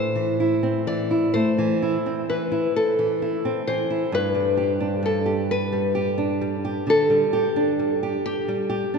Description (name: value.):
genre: romantic duo for nylon-string guitar and classical guitar.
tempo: 44 BPM (dotted quarters).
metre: 12/8.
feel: rubato.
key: A minor.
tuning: A4 = 441 Hz.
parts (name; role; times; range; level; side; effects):
nylon-string guitar; melody; 0.0-9.0 s; G4 to D5; -23 LUFS; left 2 dB; none.
nylon-string guitar; accompaniment; 0.0-9.0 s; G2 to G4; -24 LUFS; right 2 dB; none.
room: wet cathedral reverb, RT60 6.7 s.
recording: recorded in a church or concert hall, nothing above 10.6 kHz.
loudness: -20 LUFS.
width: side -5 dB against mid.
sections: 0.0-9.0 A section.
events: none.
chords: 0.0 Am; 4.1 G.